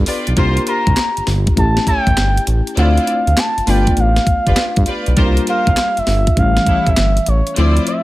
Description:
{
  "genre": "R&B, new jack swing",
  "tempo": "100 BPM",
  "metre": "4/4",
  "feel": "swing 67% on 16ths",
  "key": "unclear",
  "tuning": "A4 = 442 Hz",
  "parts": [
    { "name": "FM electric piano with auto-pan", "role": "accompaniment", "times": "0.0-8.0 s", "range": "E3 to A4", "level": "-21 LUFS", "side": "left 2 dB", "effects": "none" },
    { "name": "smooth synth bass", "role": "bass", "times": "0.0-7.8 s", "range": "G1 to G2", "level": "-15 LUFS", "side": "equal", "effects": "none" },
    { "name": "warm symphonic string section", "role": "stabs", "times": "0.1-7.9 s", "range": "E4 to D5", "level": "-25 LUFS", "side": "equal", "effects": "none" },
    { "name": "clean 12-bit digital drum machine", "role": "drums", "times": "0.1-8.0 s", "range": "handclaps, hi-hat, kick drum, snare drum", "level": "-17 LUFS", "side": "equal", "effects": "overdrive" },
    { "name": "expressive portamento lead", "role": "melody", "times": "0.4-8.0 s", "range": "C#5 to C6", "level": "-19 LUFS", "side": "equal", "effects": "chorus" }
  ],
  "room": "digital ambience",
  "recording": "none",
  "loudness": "-12 LUFS",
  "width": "side -17 dB against mid",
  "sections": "0.0-8.0 A section",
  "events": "none",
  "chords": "0.4 C7sus4; 1.6 A7; 2.8 Dm9; 3.7 G7; 5.2 C7sus4; 6.4 A7"
}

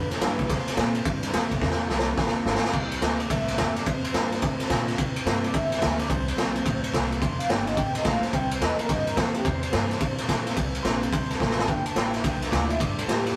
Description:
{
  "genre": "rockabilly",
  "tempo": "215 BPM",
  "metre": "4/4",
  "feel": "swing 63% on 8ths",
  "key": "C mixolydian",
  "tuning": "A4 = 441 Hz",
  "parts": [
    { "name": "electric guitar through a small old amp", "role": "melody", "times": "0.0-13.4 s", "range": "G4 to C6", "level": "-34 LUFS", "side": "equal", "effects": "tremolo" },
    { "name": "picked steel-string acoustic guitar", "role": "accompaniment", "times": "0.0-13.4 s", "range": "F2 to F4", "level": "-39 LUFS", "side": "equal", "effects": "none" },
    { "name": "electric guitar through a small old amp", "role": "riff", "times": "0.0-13.3 s", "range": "F2 to A3", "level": "-38 LUFS", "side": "equal", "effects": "none" },
    { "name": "upright bass", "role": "bass", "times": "0.0-13.3 s", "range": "F1 to C3", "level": "-35 LUFS", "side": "equal", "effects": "none" },
    { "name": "raw garage drum kit", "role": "drums", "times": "0.1-13.3 s", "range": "crash cymbal, kick drum, ride cymbal, snare drum", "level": "-27 LUFS", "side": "equal", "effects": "none" }
  ],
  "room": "light reverb",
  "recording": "rough rehearsal-room recording",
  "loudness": "-25 LUFS",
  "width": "mono",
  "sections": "0.0-2.7 A section; 2.7-13.4 B section",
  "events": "drum fill 1.6-2.7, 11.4",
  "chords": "0.5 C7; 3.9 F7; 5.0 C7; 7.2 F7; 8.3 C7; 11.7 G7"
}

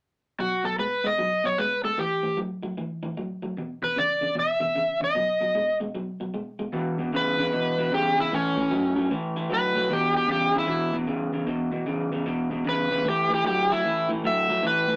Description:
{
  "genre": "blues",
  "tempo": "152 BPM",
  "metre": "4/4",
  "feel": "swing 64% on 8ths",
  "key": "unclear",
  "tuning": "A4 = 441 Hz",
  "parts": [
    { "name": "overdriven slide guitar", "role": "melody", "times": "0.4-15.0 s", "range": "C#4 to E5", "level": "-26 LUFS", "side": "equal", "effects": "none" },
    { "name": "electric guitar through a small old amp", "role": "riff", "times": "0.4-15.0 s", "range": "E2 to G#3", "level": "-30 LUFS", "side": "equal", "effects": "vibrato effect" }
  ],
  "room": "moderate club reverb, RT60 0.5 s",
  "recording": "none",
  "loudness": "-26 LUFS",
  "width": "mono",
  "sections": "0.4-6.7 A section; 6.7-15.0 B section",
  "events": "electric slide guitar solo 6.7-15.0",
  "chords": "0.4 B; 2.0 A5; 3.6 E5; 5.2 B; 6.7 E5; 8.3 A; 9.9 E5; 13.1 A5"
}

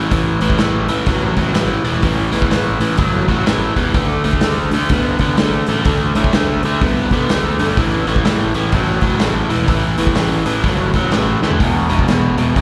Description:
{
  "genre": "blues rock power trio and southern rock",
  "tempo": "125 BPM",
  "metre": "4/4",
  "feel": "swing 62% on 8ths",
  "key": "unclear",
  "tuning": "A4 = 439 Hz",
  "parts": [
    { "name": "overdriven electric guitar", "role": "riff", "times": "0.0-12.6 s", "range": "E2 to B3", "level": "-19 LUFS", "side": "equal", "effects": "none" },
    { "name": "fuzz picked electric bass", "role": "bass", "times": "0.0-12.6 s", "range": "E1 to A2", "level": "-22 LUFS", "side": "equal", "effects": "overdrive" },
    { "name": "vintage drum kit", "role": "drums", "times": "0.1-12.6 s", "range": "hi-hat, kick drum, snare drum, toms", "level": "-21 LUFS", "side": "equal", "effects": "none" }
  ],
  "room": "light reverb",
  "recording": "live gig heard through the venue's PA, recital hall reverb",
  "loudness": "-16 LUFS",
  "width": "mono",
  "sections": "0.0-12.6 A section",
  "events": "drum fill 11.4",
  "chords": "0.0 A5; 3.9 D5; 7.8 A5; 11.6 E5"
}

